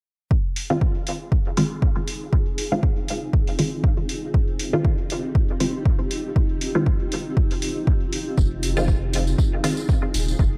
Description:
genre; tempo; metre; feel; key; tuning
dub techno; 119 BPM; 4/4; swing 55% on 16ths; F minor; A4 = 440 Hz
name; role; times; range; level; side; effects
granular cloud pad; sustained chords; 1.3-10.6 s; C4 to Ab4; -32 LUFS; equal; built-in reverb, sidechain pumping
electronic kick drum; drums; 0.3-10.5 s; none; -23 LUFS; equal; none
electronic hi-hat; drums; 0.6-10.3 s; none; -33 LUFS; equal; none
filtered dub chord stab; stabs; 0.7-9.7 s; Eb3 to F4; -28 LUFS; equal; phaser, sidechain pumping, dub echo
soft dub sub bass; bass; 8.4-10.6 s; Eb1 to F1; -26 LUFS; equal; sidechain pumping
tambourine; percussion; 8.4-10.5 s; none; -36 LUFS; equal; none
room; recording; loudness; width
light reverb, digital ambience; dark, warm production; -22 LUFS; mono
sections
0.3-10.6 A section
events
filter sweep on synth stab 0.3-10.6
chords
0.3 Fm7

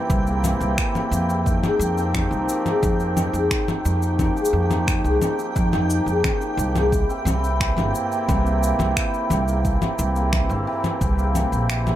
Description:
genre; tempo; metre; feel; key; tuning
folktronica; 88 BPM; 4/4; straight; unclear; A4 = 440 Hz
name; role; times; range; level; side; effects
hand-pumped harmonium; sustained chords; 0.0-12.0 s; F3 to G4; -28 LUFS; right 2 dB; vintage 12-bit sampler grit, plate reverb
cimbalom; arpeggios; 0.0-12.0 s; Eb3 to E4; -25 LUFS; left 2 dB; digital delay, plate reverb
flickering grainy texture; texture; 0.0-12.0 s; G5; -32 LUFS; right 2 dB; built-in reverb, plate reverb
upright bass; bass; 0.1-12.0 s; G1 to F2; -23 LUFS; equal; none
electronic kick drum; drums; 0.1-11.1 s; none; -24 LUFS; equal; none
electronic shaker, congas and finger snaps; drums; 0.1-12.0 s; none; -26 LUFS; left 2 dB; none
room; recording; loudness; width
light reverb; none; -19 LUFS; side -12 dB against mid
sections
0.0-12.0 A section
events
kick drops out 11.7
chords
0.0 C7; 1.5 Fm7; 6.9 C7

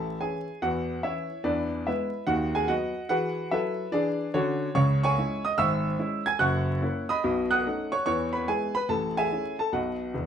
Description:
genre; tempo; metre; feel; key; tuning
jazz, stride piano; 145 BPM; 4/4; swing 66% on 8ths; unclear; A4 = 441 Hz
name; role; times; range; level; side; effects
clear grand piano; solo; 0.0-10.3 s; E1 to G#6; -25 LUFS; equal; none
room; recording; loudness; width
wet studio reverb, RT60 0.6 s; heard from further back in the room, vinyl crackle; -25 LUFS; side -8 dB against mid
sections
0.0-10.3 A section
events
none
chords
0.0 A; 1.4 E; 2.3 B/D#; 3.1 E; 4.8 C#m; 6.4 F#7; 7.2 B9; 8.1 E; 8.9 Amaj7; 9.7 B

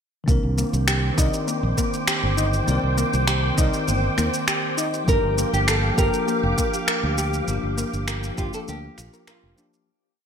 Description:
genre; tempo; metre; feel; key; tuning
sunset chillout; 100 BPM; 4/4; straight; C minor; A4 = 439 Hz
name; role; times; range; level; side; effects
bell-like tine electric piano; accompaniment; 0.2-9.9 s; Eb3 to D5; -29 LUFS; moving between left 4 dB and right 3 dB; auto-pan, low-pass filter, ping-pong delay
soft string machine; sustained chords; 0.6-9.8 s; G4 to D6; -28 LUFS; equal; ensemble chorus, vintage 12-bit sampler grit
steel pan; arpeggios; 0.3-9.7 s; Bb3 to Bb4; -29 LUFS; left 4 dB; ping-pong delay
fingered electric bass; bass; 0.3-9.5 s; F1 to Eb2; -24 LUFS; right 1 dB; none
electronic kick drum; drums; 0.3-8.5 s; none; -23 LUFS; right 1 dB; none
electronic shaker and finger snaps; drums; 0.3-9.8 s; none; -26 LUFS; equal; gated reverb
nylon-string guitar; melody; 5.1-9.7 s; F4 to Bb4; -26 LUFS; equal; ping-pong delay
room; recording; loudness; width
moderate plate reverb, RT60 1.4 s; bright 1980s-style digital production; -20 LUFS; side -7 dB against mid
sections
0.3-9.9 groove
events
fade-out 6.7-9.9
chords
0.3 Cm9; 5.1 Gm7

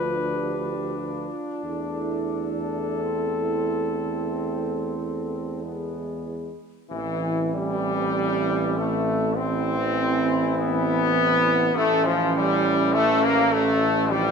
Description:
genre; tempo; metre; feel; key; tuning
classical, hymn-like piece for brass band; 43-52 BPM; 4/4; rubato; A minor; A4 = 439 Hz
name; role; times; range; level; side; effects
mellow flugelhorn; melody; 0.0-14.3 s; E4 to B4; -32 LUFS; left 7 dB; none
dark French horn section; second line; 0.0-14.3 s; C4 to G4; -30 LUFS; right 8 dB; none
clear trombone section; accompaniment; 0.0-14.3 s; E3 to D4; -24 LUFS; left 1 dB; none
warm euphonium; accompaniment; 0.0-14.3 s; E3 to A3; -32 LUFS; right 3 dB; none
warm tuba; bass; 0.0-14.3 s; A1 to E2; -30 LUFS; equal; none
room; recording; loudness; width
moderate scoring stage reverb, RT60 1.7 s; minimal, uncompressed stereo recording; -21 LUFS; side -6 dB against mid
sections
0.0-6.9 A section; 6.9-14.3 B section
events
none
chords
0.0 Dm; 1.6 Am/E; 4.3 E; 6.9 Am; 11.7 A

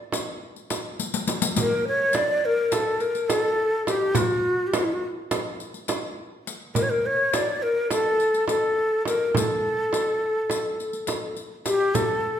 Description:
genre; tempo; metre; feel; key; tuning
Turkish makam ensemble; 208 BPM (eighths); 9/8; straight; A makam hicaz; A4 = 440 Hz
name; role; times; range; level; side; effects
frame drum; percussion; 0.1-12.1 s; none; -29 LUFS; right 3 dB; none
riq; percussion; 0.1-12.1 s; none; -30 LUFS; left 5 dB; none
breathy ney; melody; 1.6-12.4 s; E4 to D5; -22 LUFS; left 1 dB; none
room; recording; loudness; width
wet recital hall reverb, RT60 1.4 s; minimal, uncompressed stereo recording; -22 LUFS; side -9 dB against mid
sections
0.0-12.0 A section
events
drum fill 1.0-1.6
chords
none

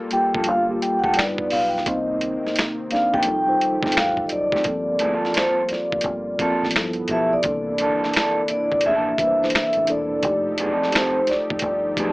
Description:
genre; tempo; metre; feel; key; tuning
R&B, neo-soul; 86 BPM; 4/4; swing 63% on 16ths; G minor; A4 = 440 Hz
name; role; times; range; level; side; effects
mellow tine electric piano; accompaniment; 0.0-12.1 s; Eb3 to D5; -27 LUFS; equal; medium stereo tremolo
warm analog pad; sustained chords; 0.0-12.1 s; C3 to A4; -31 LUFS; equal; wide subtle chorus
vibraphone with soft mallets; melody; 0.1-12.1 s; C5 to G5; -21 LUFS; equal; none
deep dub fingered electric bass; bass; 0.1-11.9 s; E1 to C2; -35 LUFS; equal; none
boom bap sampler-style drum kit; drums; 0.1-12.1 s; finger snaps, hi-hat, kick drum, snare drum; -23 LUFS; equal; none
electric guitar at the edge of break-up; second line; 0.4-12.1 s; Eb3 to A4; -25 LUFS; right 2 dB; none
room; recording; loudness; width
light reverb; small speaker sound; -19 LUFS; side -22 dB against mid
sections
0.0-4.7 A section; 4.7-12.1 B section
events
none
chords
0.0 Gm9; 1.2 G7b13; 1.9 Cm9; 3.3 F9; 4.7 Gm11; 6.7 G13; 7.4 C13; 10.2 F9

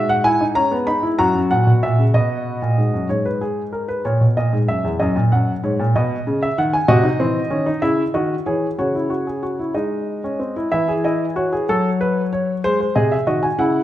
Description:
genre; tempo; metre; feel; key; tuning
classical, baroque-style 3-part fugue for grand piano; 63 BPM (dotted quarters); 6/8; straight; C# minor from 6.9 s; A4 = 438 Hz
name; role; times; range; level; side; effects
warm baby grand piano; solo; 0.0-13.8 s; E2 to B5; -16 LUFS; equal; none
room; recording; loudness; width
moderate recital hall reverb, RT60 1.7 s; none; -16 LUFS; side -13 dB against mid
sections
0.0-3.1 A section; 3.1-10.7 B section; 10.7-13.8 A section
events
none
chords
0.2 E/G#; 1.2 F#7; 2.1 B; 3.1 G#madd9; 4.0 A#dim; 5.0 D#m/F#; 5.9 G#m/B; 6.9 Cdim; 7.8 C#m; 8.8 G#sus4/C#; 9.7 G#; 10.7 C#m/E; 11.7 F#m; 12.6 G#7

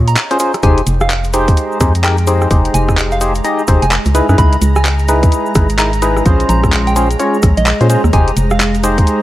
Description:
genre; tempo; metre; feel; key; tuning
UK garage, two-step garage; 128 BPM; 4/4; swing 62% on 16ths; F minor; A4 = 440 Hz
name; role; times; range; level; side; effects
soft string machine; sustained chords; 0.0-9.2 s; Ab3 to Bb5; -22 LUFS; equal; ensemble chorus, sidechain pumping
organ-like FM bass; bass; 0.0-9.0 s; F1 to Bb2; -14 LUFS; equal; none
soft synth bell; melody; 0.1-8.7 s; Eb5 to Cb6; -22 LUFS; right 2 dB; chorus, digital delay
garage drum kit; drums; 0.1-9.2 s; handclaps, hi-hat, rim click; -19 LUFS; equal; none
cabasa; percussion; 0.1-9.2 s; none; -30 LUFS; left 2 dB; none
percussive organ stab; stabs; 0.3-9.2 s; Db4 to Eb5; -16 LUFS; left 1 dB; chorus, digital delay
electronic kick drum; drums; 0.6-9.1 s; none; -12 LUFS; equal; none
room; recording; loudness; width
light reverb; vinyl crackle; -10 LUFS; side -15 dB against mid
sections
0.0-9.2 A section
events
break 0.2-0.6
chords
0.0 Bbm9; 0.6 Fm9; 4.1 Dbm9; 6.3 Bbm9; 8.1 Fm9

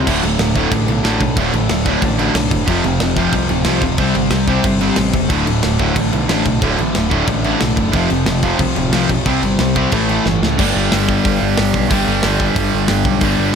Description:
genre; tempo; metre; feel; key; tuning
punk rock; 182 BPM; 4/4; straight; unclear; A4 = 440 Hz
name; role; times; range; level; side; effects
crunchy overdriven guitar; riff; 0.0-13.6 s; D2 to G4; -20 LUFS; left 12 dB; none
distorted electric guitar; riff; 0.0-13.6 s; D2 to C4; -19 LUFS; right 10 dB; overdrive
distorted electric guitar; riff; 0.0-10.6 s; D2 to C4; -20 LUFS; equal; overdrive
fuzz picked electric bass; bass; 0.0-13.5 s; D1 to C#2; -20 LUFS; equal; overdrive
tight metal drum kit; drums; 0.1-13.3 s; crash cymbal, hi-hat, kick drum, snare drum; -20 LUFS; equal; none
room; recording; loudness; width
light reverb; none; -13 LUFS; side -7 dB against mid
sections
0.1-10.6 A section; 10.6-13.6 B section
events
drum fill 10.3-10.6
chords
0.1 D5; 2.7 F5; 4.0 C5; 5.3 D5; 7.9 F5; 9.3 C5; 9.9 A; 10.6 G

